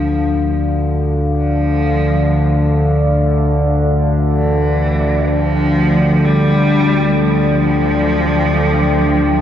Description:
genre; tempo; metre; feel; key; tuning
ambient; free time; none; none; D minor; A4 = 440 Hz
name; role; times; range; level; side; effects
rich cello; melody; 0.0-9.4 s; E3 to G3; -19 LUFS; right 1 dB; diffuse ambient delay
deep dark ambient pad; sustained chords; 0.0-9.4 s; A3 to G5; -20 LUFS; equal; chorus, built-in reverb
analog drone; drone; 0.0-9.4 s; D2 to D3; -14 LUFS; left 1 dB; chorus
room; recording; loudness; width
wet cathedral reverb, RT60 6.3 s; in a vast, echoing space, cassette tape; -12 LUFS; side -10 dB against mid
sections
0.0-9.4 A section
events
fade-in on ambient pad 0.0-9.4; fade-in on cello 0.0-9.4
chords
0.0 Dm

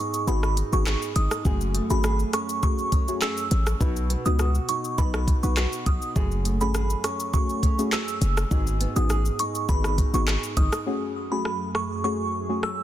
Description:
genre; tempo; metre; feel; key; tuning
dancehall; 102 BPM; 4/4; straight; F# dorian; A4 = 440 Hz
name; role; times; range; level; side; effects
glassy synth bell; melody; 0.0-12.8 s; B5 to E6; -30 LUFS; right 2 dB; chorus, ping-pong delay
nylon-string guitar; arpeggios; 0.0-11.4 s; F#2 to G#4; -32 LUFS; right 3 dB; none
afro-pop drum kit; drums; 0.1-12.8 s; handclaps, hi-hat, kick drum, rim click, shaker; -26 LUFS; equal; soft clipping on snare
deep mellow chord stab; accompaniment; 0.3-12.7 s; A3 to B4; -31 LUFS; left 2 dB; chorus, sidechain pumping
warm 808-style bass; bass; 0.3-10.7 s; F#1 to C#2; -24 LUFS; equal; none
warm analog pad; sustained chords; 10.9-12.8 s; F#2 to G#4; -33 LUFS; right 1 dB; chorus, tremolo, sidechain pumping
room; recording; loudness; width
little or no reverb; dense, heavily limited modern master; -22 LUFS; side -12 dB against mid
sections
0.0-10.9 A section; 10.9-12.8 B section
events
kick muted 0.3-1.5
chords
0.0 G#m7; 1.5 F#madd9; 3.8 B; 6.2 F#madd9; 8.5 G#m7; 10.9 F#madd9

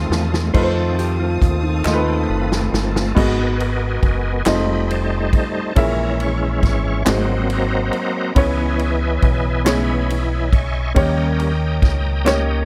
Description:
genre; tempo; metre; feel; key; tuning
slow gospel; 46 BPM (dotted quarters); 6/8; straight; unclear; A4 = 441 Hz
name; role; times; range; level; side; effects
warm concert grand piano; accompaniment; 0.0-12.7 s; G#2 to E5; -25 LUFS; equal; none
bright tonewheel organ; sustained chords; 0.0-12.7 s; Eb3 to D#6; -26 LUFS; equal; slow rotary speaker, chorus vibrato
warm studio string section; sustained chords; 0.0-3.1 s; F5 to D#6; -35 LUFS; equal; none
deep dub fingered electric bass; bass; 0.0-12.7 s; F1 to F2; -23 LUFS; equal; none
swinging big-band drum kit; drums; 0.1-12.5 s; crash cymbal, hi-hat, kick drum, ride cymbal, snare drum; -22 LUFS; equal; none
mellow electric guitar; second line; 0.5-2.9 s; Eb4 to C5; -29 LUFS; equal; spring reverb
group handclap; percussion; 1.9-12.7 s; none; -27 LUFS; equal; none
room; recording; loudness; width
little or no reverb; none; -18 LUFS; mono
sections
0.5-3.2 A section; 3.2-12.7 B section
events
drum fill 0.0-0.5, 1.9-3.2, 12.3-12.7; tonewheel organ solo 3.2-12.7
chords
0.0 F7; 3.2 G#m7; 4.5 F7; 5.8 A#m7b5; 7.1 G#7; 8.4 C#m7; 11.0 D#7

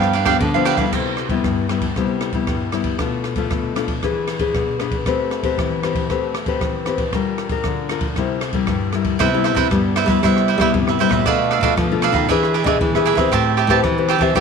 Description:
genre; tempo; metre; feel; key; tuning
samba and choro; 116 BPM; 4/4; straight; C major; A4 = 437 Hz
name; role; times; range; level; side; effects
cavaquinho; accompaniment; 0.0-0.9, 9.2-14.4 s; D4 to A5; -19 LUFS; right 12 dB; none
nylon-string guitar; accompaniment; 0.0-14.4 s; G2 to B4; -20 LUFS; left 7 dB; none
nylon-string guitar; bass; 0.0-0.8, 9.2-14.4 s; G2 to G3; -21 LUFS; right 1 dB; none
open jazz drum kit; drums; 0.0-14.4 s; crash cymbal, kick drum, ride cymbal, rim click; -23 LUFS; right 1 dB; none
room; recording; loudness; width
moderate echo chamber reverb, RT60 1.4 s; 1960s-style stereo with parts hard left and right; -16 LUFS; side -6 dB against mid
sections
0.9-9.2 A section; 9.2-14.4 B section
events
none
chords
0.0 G7; 0.9 Cmaj7; 3.0 Bm7b5; 4.0 E7; 5.1 Am9; 7.1 Gm7; 8.2 C7; 9.2 Cmaj7; 11.3 Bm7b5; 12.3 E7; 13.3 Am9

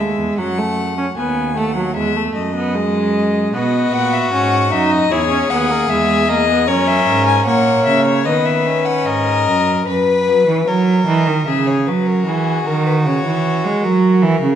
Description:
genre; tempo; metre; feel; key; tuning
classical, baroque-style fugue for string quartet; 76 BPM; 4/4; straight; B major from 9.9 s; A4 = 438 Hz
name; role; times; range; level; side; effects
warm violin; melody; 0.0-14.6 s; G#4 to G#5; -20 LUFS; left 8 dB; none
warm viola; accompaniment; 0.0-9.9 s; F#3 to E4; -19 LUFS; right 2 dB; none
rich cello; bass; 0.0-14.6 s; D#2 to G#3; -18 LUFS; right 3 dB; none
warm violin; second line; 3.5-14.6 s; F#4 to C#5; -19 LUFS; left 3 dB; none
room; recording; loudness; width
wet recital hall reverb, RT60 1.8 s; nothing above 10.8 kHz; -14 LUFS; side -9 dB against mid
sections
0.0-9.9 A section; 9.9-14.6 B section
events
none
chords
0.4 B7/F#; 2.0 E; 3.5 B; 5.1 C#m7; 6.7 F#7; 8.3 B/D#; 9.9 B/F#; 11.5 C#m; 13.1 F#7/C#

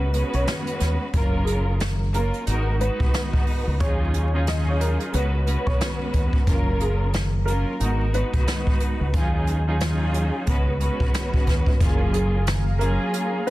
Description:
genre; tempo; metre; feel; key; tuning
hip hop, boom-bap hip-hop; 90 BPM; 4/4; swing 59% on 16ths; F# major; A4 = 443 Hz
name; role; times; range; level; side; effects
warm upright piano; melody; 0.0-13.5 s; G#4 to D#5; -31 LUFS; equal; high-pass filter, low-pass filter, tape echo
dark studio string section; accompaniment; 0.0-13.5 s; A#2 to B4; -27 LUFS; right 1 dB; cassette tape, high-pass filter, low-pass filter
deep dub fingered electric bass; bass; 0.0-13.0 s; F#1 to D#2; -23 LUFS; equal; none
jazz brush drum kit; drums; 0.1-13.5 s; hi-hat, kick drum, snare drum; -24 LUFS; equal; none
warm analog pad; sustained chords; 11.8-13.5 s; G#4 to A#5; -34 LUFS; left 1 dB; chorus, high-pass filter, low-pass filter
room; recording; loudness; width
small room ambience; dense, heavily limited modern master, vinyl crackle; -20 LUFS; side -17 dB against mid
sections
0.0-11.8 A section; 11.8-13.5 B section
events
break 0.0-1.1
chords
0.0 C#7sus4; 1.1 F#maj7; 2.5 G#m9; 3.8 D#m11; 5.1 C#7sus4; 6.5 F#maj7; 7.8 G#m9; 9.1 D#m11; 10.5 C#7sus4; 11.8 F#maj9

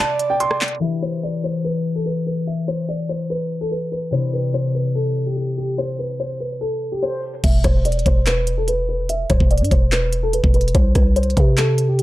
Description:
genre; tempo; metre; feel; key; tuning
hip hop, trap; 145 BPM; 4/4; half-time; E minor; A4 = 440 Hz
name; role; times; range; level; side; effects
dark concert grand piano; melody; 0.0-12.0 s; G4 to C6; -23 LUFS; equal; low-pass filter, tape echo
breathy flute-like synth lead; second line; 0.0-0.8 s; D5; -22 LUFS; right 3 dB; chorus, tape echo
concert harp; accompaniment; 0.0-7.5 s; C3 to D5; -23 LUFS; left 3 dB; low-pass filter
trap drum kit; drums; 0.2-0.8, 7.4-12.0 s; crash cymbal, handclaps, hi-hat, kick drum, rim click; -18 LUFS; equal; none
growling 808-style bass; bass; 7.4-12.0 s; D1 to C3; -19 LUFS; equal; none
room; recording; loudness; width
digital ambience; dark, warm production, low-pass filter; -17 LUFS; side -16 dB against mid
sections
0.8-7.4 A section; 7.4-12.0 B section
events
break 0.0-0.8; filter sweep 0.8-7.4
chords
0.0 Cadd9; 0.8 Em; 4.1 Cadd9; 7.4 E5; 10.7 C5

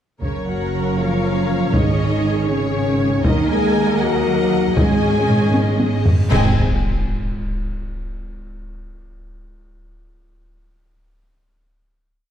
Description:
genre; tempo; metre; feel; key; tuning
cinematic, epic orchestral film score; 79 BPM (dotted quarters); 6/8; straight; unclear; A4 = 440 Hz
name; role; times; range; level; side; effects
clear symphonic violin section; melody; 0.2-6.6 s; Db5 to Eb5; -30 LUFS; left 4 dB; none
warm symphonic violin section; second line; 0.2-6.6 s; Db5 to Ab5; -28 LUFS; left 2 dB; none
warm symphonic viola section; accompaniment; 0.2-6.6 s; Bb3 to Bb4; -26 LUFS; equal; none
mellow French horn section; sustained chords; 0.2-6.5 s; Db4 to Ab4; -24 LUFS; left 6 dB; none
warm trombone section; sustained chords; 0.2-6.5 s; Db3 to Db4; -28 LUFS; right 1 dB; none
rich symphonic cello section; bass; 0.2-6.6 s; Db3 to Ab3; -23 LUFS; right 3 dB; none
warm symphonic double bass section; bass; 0.2-6.6 s; Gb1 to Eb2; -23 LUFS; right 3 dB; none
solo taiko drums; drums; 0.2-6.3 s; none; -20 LUFS; equal; none
timpani; percussion; 1.7-2.5, 4.8-6.6 s; Ab2; -24 LUFS; equal; none
cymbal swell, clash cymbals and concert bass drum; percussion; 3.3-7.3 s; none; -25 LUFS; equal; none
reverse cymbal and sub drop; sound effects; 6.2-7.8 s; none; -28 LUFS; equal; none
room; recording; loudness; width
wet scoring stage reverb, RT60 1.7 s; dark, warm production; -16 LUFS; side -9 dB against mid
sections
0.2-6.3 theme; 6.3-7.8 final chord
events
drum fill 5.6-6.3; reverse cymbal 6.2; band accent 6.3-6.8; impact 6.3-7.8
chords
0.2 Gb; 1.7 Absus4; 3.3 Ebm; 4.8 Absus4; 6.3 Ab

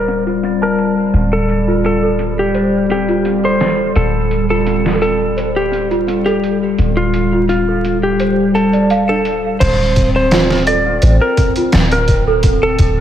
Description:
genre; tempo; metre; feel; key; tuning
trip hop; 85 BPM; 4/4; straight; D minor; A4 = 442 Hz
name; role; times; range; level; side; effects
clean lap steel guitar; melody; 0.0-13.0 s; F4 to D5; -17 LUFS; left 1 dB; dub echo
warbly tape-like pad; sustained chords; 0.0-13.0 s; G3 to C4; -18 LUFS; left 1 dB; chorus, built-in reverb
small celesta; arpeggios; 0.0-13.0 s; C4 to A5; -20 LUFS; right 3 dB; wide subtle chorus, low-pass filter, diffuse ambient delay
soft 808-style bass; bass; 0.0-13.0 s; D1 to A1; -18 LUFS; equal; none
trip hop sampler-style drum kit; drums; 0.1-13.0 s; crash cymbal, hi-hat, kick drum, snare drum; -17 LUFS; equal; low-pass filter on hats, studio reverb, low-pass filter on snare, low-pass filter on cymbals, low-pass filter on kick
room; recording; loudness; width
moderate plate reverb, RT60 2.2 s; dreamy mix soaked in reverb, vinyl crackle, low-pass filter; -12 LUFS; side -10 dB against mid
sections
0.0-9.6 A section; 9.6-13.0 B section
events
filter sweep on celesta 0.0-9.6; filter sweep 0.0-9.6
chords
0.0 Dm7

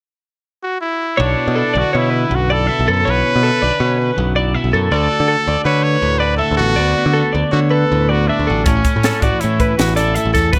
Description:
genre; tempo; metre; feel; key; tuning
math rock and midwest emo; 160 BPM; 5/4; straight; unclear; A4 = 441 Hz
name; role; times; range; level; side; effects
bright trumpet; melody; 0.6-10.6 s; C#4 to C#5; -21 LUFS; equal; none
twelve-string electric guitar; accompaniment; 1.2-10.6 s; D2 to F#4; -24 LUFS; equal; lush chorus
twelve-string electric guitar; arpeggios; 1.2-10.6 s; A4 to E5; -22 LUFS; equal; none
modern bright picked electric bass; bass; 1.2-10.6 s; G1 to D3; -20 LUFS; equal; none
crisp fusion drum kit; drums; 8.7-10.6 s; hi-hat, kick drum, snare drum; -20 LUFS; equal; none
room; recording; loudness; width
light reverb; none; -16 LUFS; mono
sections
0.0-1.2 A section; 1.2-10.6 B section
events
none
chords
0.0 N.C.; 1.2 Bm11; 4.9 D6; 8.7 A

